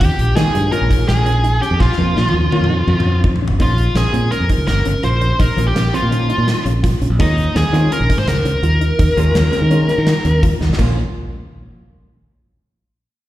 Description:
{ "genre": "progressive instrumental, band music in an uneven meter", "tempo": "167 BPM", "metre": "5/4", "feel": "straight", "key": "Bb dorian", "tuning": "A4 = 440 Hz", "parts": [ { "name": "high-gain lead guitar", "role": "melody", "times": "0.0-10.4 s", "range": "Eb4 to C5", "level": "-20 LUFS", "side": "equal", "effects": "distortion, slapback echo" }, { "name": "soft round pluck", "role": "arpeggios", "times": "0.0-11.0 s", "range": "Bb3 to F4", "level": "-26 LUFS", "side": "equal", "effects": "chorus, slapback echo" }, { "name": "modern bright fingered electric bass", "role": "bass", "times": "0.0-11.0 s", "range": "G1 to Eb3", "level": "-16 LUFS", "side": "equal", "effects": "none" }, { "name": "gated 80s drum kit", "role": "drums", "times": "0.0-10.9 s", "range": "crash cymbal, hi-hat, kick drum, snare drum, toms", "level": "-19 LUFS", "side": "equal", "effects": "none" }, { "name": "hollow-body jazz guitar", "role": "accompaniment", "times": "0.4-11.0 s", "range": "F3 to F4", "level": "-24 LUFS", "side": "equal", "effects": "double-tracked left and right, slapback echo" } ], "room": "light reverb", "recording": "live gig heard through the venue's PA, recital hall reverb", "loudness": "-13 LUFS", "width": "side -14 dB against mid", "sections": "0.0-3.6 A section; 3.6-10.8 B section; 10.8-12.6 C section", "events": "drum fill 1.8-3.6, 10.6", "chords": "0.0 Eb7sus4; 1.8 Bbm; 7.2 Eb7sus4; 10.8 Bb5", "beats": "| 0.01 0.37 0.73 1.08 1.44 | 1.80 2.16 2.52 2.88 3.24 | 3.60 3.96 4.32 4.68 5.04 | 5.40 5.76 6.12 6.48 6.83 | 7.20 7.55 7.91 8.27 8.63 | 8.99 9.35 9.71 10.07 10.43 | 10.79" }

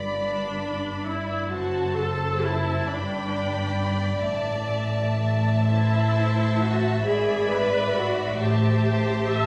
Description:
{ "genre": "classical, slow romantic movement for string orchestra", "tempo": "44 BPM (dotted quarters)", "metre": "6/8", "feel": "rubato", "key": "G major", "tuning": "A4 = 440 Hz", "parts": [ { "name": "rich studio violin section", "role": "melody", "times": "0.0-9.5 s", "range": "A5 to B5", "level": "-36 LUFS", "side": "equal", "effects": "none" }, { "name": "rich studio violin section", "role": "second line", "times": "0.0-9.5 s", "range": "C5 to G5", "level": "-32 LUFS", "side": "equal", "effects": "none" }, { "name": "rich studio cello section", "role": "bass", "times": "0.0-9.5 s", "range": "F#2 to A2", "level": "-32 LUFS", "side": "equal", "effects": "none" }, { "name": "rich studio double bass section", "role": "bass", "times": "0.0-9.5 s", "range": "F#1 to A1", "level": "-29 LUFS", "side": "equal", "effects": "none" }, { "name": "rich studio viola section", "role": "accompaniment", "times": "0.1-9.5 s", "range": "D4 to E5", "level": "-30 LUFS", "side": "equal", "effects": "none" } ], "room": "wet recital hall reverb, RT60 1.6 s", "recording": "recorded in a church or concert hall, small room ambience", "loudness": "-24 LUFS", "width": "mono", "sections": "0.0-9.5 A section", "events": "none", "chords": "0.0 G; 1.5 D7/F# (rootless); 2.9 G; 4.3 Am; 7.1 E7/G#; 8.4 Am7", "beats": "0.14 | 1.53 2.91 | 4.28 5.67 | 7.06 8.40" }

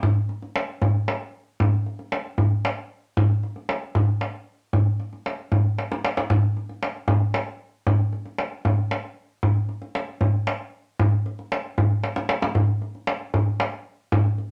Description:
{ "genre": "persian", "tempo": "77 BPM (dotted quarters)", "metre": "6/8", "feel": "straight", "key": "none", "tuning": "none", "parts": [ { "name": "tombak", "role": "percussion", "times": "0.0-14.4 s", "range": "none", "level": "-24 LUFS", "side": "equal", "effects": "none" } ], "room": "wet studio reverb, RT60 0.6 s", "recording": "none", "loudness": "-24 LUFS", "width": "mono", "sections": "0.0-6.3 A section; 6.3-14.5 B section", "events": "drum fill 5.8-6.3, 12.0-12.6", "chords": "none", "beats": "| 0.04 0.82 | 1.60 2.39 | 3.17 3.95 | 4.74 5.52 | 6.30 7.09 | 7.87 8.65 | 9.44 10.22 | 11.00 11.78 | 12.57 13.35 | 14.13" }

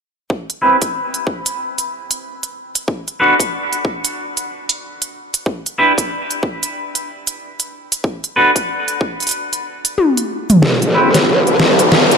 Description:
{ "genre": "glitch hop", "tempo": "93 BPM", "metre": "4/4", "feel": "swing 60% on 16ths", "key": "unclear", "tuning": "A4 = 440 Hz", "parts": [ { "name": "electronic kick drum", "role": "drums", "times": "0.3-9.2 s", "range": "none", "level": "-21 LUFS", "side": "equal", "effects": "high-pass filter on kick, studio reverb" }, { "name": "dubstep drum kit", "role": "drums", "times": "0.5-12.2 s", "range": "hi-hat, snare drum, toms", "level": "-15 LUFS", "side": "equal", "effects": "studio reverb" }, { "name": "clean electric guitar", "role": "stabs", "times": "0.6-11.1 s", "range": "C4 to B4", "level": "-18 LUFS", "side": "equal", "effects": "sidechain pumping, low-pass filter, tape echo" }, { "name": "growl bass", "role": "bass", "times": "10.6-12.2 s", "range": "G1 to C2", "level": "-14 LUFS", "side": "equal", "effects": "distortion, chorus, tube saturation, high-pass filter" }, { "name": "riser", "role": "sound effects", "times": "11.1-12.2 s", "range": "none", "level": "-16 LUFS", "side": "equal", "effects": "none" } ], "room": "wet cathedral reverb, RT60 5.4 s", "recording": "dreamy mix soaked in reverb", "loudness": "-15 LUFS", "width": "side -5 dB against mid", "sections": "0.3-10.6 A section; 10.6-12.2 B section", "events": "filter sweep on clean electric guitar 0.3-10.6; kick drops out 10.0-10.6; drum fill 10.0-10.6, 10.6-12.2; build-up 10.6-12.2; riser 11.1-12.2", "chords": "0.3 Cmaj7; 2.9 D6; 5.5 Dsus24; 8.0 D6; 10.6 Am7", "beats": "| 0.30 0.95 1.59 2.24 | 2.88 3.53 4.17 4.82 | 5.46 6.11 6.75 7.40 | 8.04 8.69 9.34 9.98 | 10.63 11.27 11.92" }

